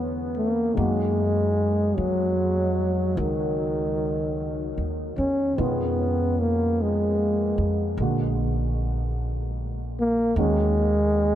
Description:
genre	jazz ballad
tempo	50 BPM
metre	4/4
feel	swing 66% on 8ths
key	unclear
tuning	A4 = 439 Hz
part	dark grand piano	accompaniment	0.0-11.3 s	Cb3 to Gb4	-32 LUFS	right 2 dB	lush chorus
part	upright bass	bass	0.0-11.3 s	Bb1 to Gb2	-27 LUFS	equal	none
part	dark trombone	melody	0.4-11.3 s	Eb3 to Db4	-24 LUFS	equal	analog delay
room	moderate huge ambient reverb, RT60 8.8 s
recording	dreamy mix soaked in reverb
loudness	-22 LUFS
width	side -11 dB against mid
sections	0.0-11.3 A section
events	none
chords	0.0 E9; 0.8 Gb69; 5.6 Fm7b5; 8.0 Bbaug7; 10.4 Ebm7

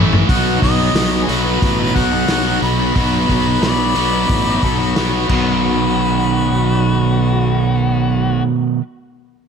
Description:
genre	classic rock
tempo	90 BPM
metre	4/4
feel	straight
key	B mixolydian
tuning	A4 = 437 Hz
part	cranked stack guitar	riff	0.0-8.8 s	A2 to B4	-18 LUFS	right 9 dB	overdrive
part	overdriven semi-hollow guitar	riff	0.0-8.8 s	A2 to D#4	-20 LUFS	left 11 dB	none
part	fuzz fingered electric bass	bass	0.0-8.4 s	A1 to B1	-20 LUFS	equal	overdrive
part	vintage drum kit	drums	0.1-5.5 s	crash cymbal, hi-hat, kick drum, snare drum, toms	-20 LUFS	equal	none
part	mellow harmonica	melody	0.3-8.4 s	G#4 to B5	-22 LUFS	left 2 dB	none
part	octave-fuzz lead guitar	second line	3.6-8.4 s	F#4 to D5	-24 LUFS	left 5 dB	distortion
room	light reverb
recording	none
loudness	-13 LUFS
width	side -6 dB against mid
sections	0.3-5.6 A section; 5.6-8.3 B section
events	drum fill 0.0, 5.3-5.6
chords	0.3 B

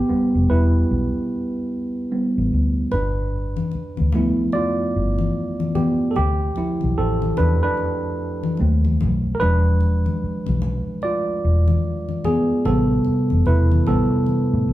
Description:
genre	R&B, neo-soul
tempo	74 BPM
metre	4/4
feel	swing 62% on 16ths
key	A minor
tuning	A4 = 440 Hz
part	tine electric piano	accompaniment	0.0-14.7 s	C3 to D5	-21 LUFS	right 1 dB	none
part	vintage muted fingered electric bass	bass	0.1-14.7 s	E1 to A2	-20 LUFS	equal	none
part	congas	percussion	2.9-14.5 s	none	-27 LUFS	left 4 dB	none
room	wet large studio reverb, RT60 1.3 s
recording	band playing live in one room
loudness	-18 LUFS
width	side -14 dB against mid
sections	0.0-14.7 A section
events	tine electric piano solo 0.0-14.7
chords	0.0 Am9 (rootless); 2.9 G13; 6.2 Dm9; 8.6 D#dim7; 9.4 E7b9; 12.6 Am9

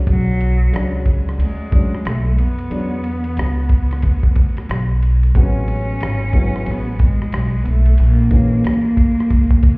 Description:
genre	hip hop, jazz-hop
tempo	91 BPM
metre	4/4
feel	swing 62% on 16ths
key	B dorian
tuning	A4 = 439 Hz
part	dark grand piano	accompaniment	0.0-8.7 s	E3 to E4	-25 LUFS	left 1 dB	none
part	upright bass	bass	0.0-9.8 s	G#1 to E#2	-17 LUFS	equal	none
part	rich cello	melody	0.1-9.8 s	F#3 to C#4	-22 LUFS	equal	slapback echo
part	dusty soul sampler-style drum kit	drums	0.1-9.8 s	hi-hat, kick drum, ride cymbal, rim click	-16 LUFS	equal	none
room	studio ambience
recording	heard muffled through a wall, stone room reverb, EQ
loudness	-14 LUFS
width	side -29 dB against mid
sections	0.0-9.8 A section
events	none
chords	0.1 Bm69; 2.7 E7(no3); 5.3 Amaj13; 8.0 A#7#9

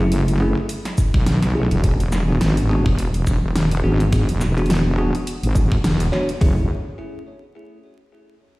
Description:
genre	glitch hop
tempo	105 BPM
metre	4/4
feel	swing 56% on 16ths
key	F# minor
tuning	A4 = 440 Hz
part	bell-like tine electric piano	stabs	0.0-6.6 s	A3 to C#5	-25 LUFS	equal	phaser, sidechain pumping, digital delay
part	wobble bass	bass	0.0-6.7 s	E1 to B1	-18 LUFS	equal	chorus
part	dubstep drum kit	drums	0.1-6.4 s	hi-hat, shaker, snare drum	-24 LUFS	equal	overdrive
part	dubstep drum kit	drums	1.0-6.6 s	hi-hat, kick drum, toms	-18 LUFS	equal	overdrive
room	digital ambience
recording	played on a big sound system in a bare room, stone room reverb, vinyl crackle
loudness	-16 LUFS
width	side -20 dB against mid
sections	0.0-6.4 A section; 6.4-8.6 B section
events	drop 0.0-6.4; band accent 5.8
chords	0.0 F#m7; 1.8 E7; 6.4 F#m7

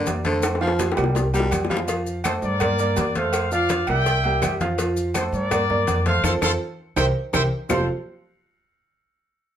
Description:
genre	latin, salsa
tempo	165 BPM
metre	4/4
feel	straight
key	F major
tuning	A4 = 440 Hz
part	raspy baritone saxophone	second line	0.0-1.8 s	D3 to G3	-28 LUFS	left 3 dB	none
part	clear grand piano	accompaniment	0.0-7.9 s	F3 to F5	-25 LUFS	right 2 dB	none
part	upright bass	bass	0.0-7.9 s	F1 to G2	-26 LUFS	equal	none
part	congas	percussion	0.1-7.8 s	none	-31 LUFS	left 3 dB	none
part	cowbell and bongos	percussion	0.1-7.8 s	none	-29 LUFS	left 4 dB	none
part	maracas	percussion	0.1-7.8 s	none	-37 LUFS	left 6 dB	none
part	timbales and agogo bells	percussion	0.1-7.8 s	none	-30 LUFS	right 4 dB	none
part	claves	percussion	0.4-7.8 s	none	-33 LUFS	left 5 dB	none
part	clear trumpet section	melody	2.3-7.9 s	A4 to G5	-24 LUFS	left 1 dB	none
room	moderate studio reverb, RT60 0.7 s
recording	none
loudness	-19 LUFS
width	side -10 dB against mid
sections	0.0-1.9 A section; 1.9-7.7 B section; 7.7-9.2 C section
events	drum fill 0.4-1.9, 6.8-7.7; band accent 6.2-7.7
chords	0.4 F; 1.2 C5; 1.9 F; 2.6 Gm7; 3.3 F; 4.1 C7; 4.8 F; 5.5 Gm7; 6.2 F; 7.0 C7; 7.7 F5

